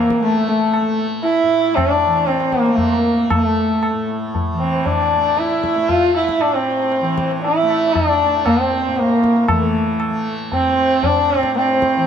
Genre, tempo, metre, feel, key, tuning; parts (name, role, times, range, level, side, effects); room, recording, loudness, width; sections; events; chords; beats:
indian classical, Hindustani; 116 BPM; 3/4; straight; A raga bhairavi; A4 = 440 Hz
warm sarangi; melody; 0.0-12.1 s; A3 to F4; -16 LUFS; equal; tape echo
hand-pumped harmonium; second line; 0.0-12.1 s; A4 to F5; -26 LUFS; right 5 dB
tanpura; drone; 0.0-12.1 s; A2 to A3; -26 LUFS; right 1 dB
tabla; percussion; 0.1-12.1 s; -24 LUFS; left 1 dB
moderate plate reverb, RT60 2.4 s; -15 LUFS; side -8 dB against mid
0.0-9.5 A section; 9.5-12.1 B section
| 0.20 0.72 1.24 | 1.75 2.27 2.79 | 3.30 3.82 4.33 | 4.85 5.37 5.88 | 6.40 6.91 7.43 | 7.94 8.46 8.97 | 9.49 10.00 10.52 | 11.03 11.54 12.06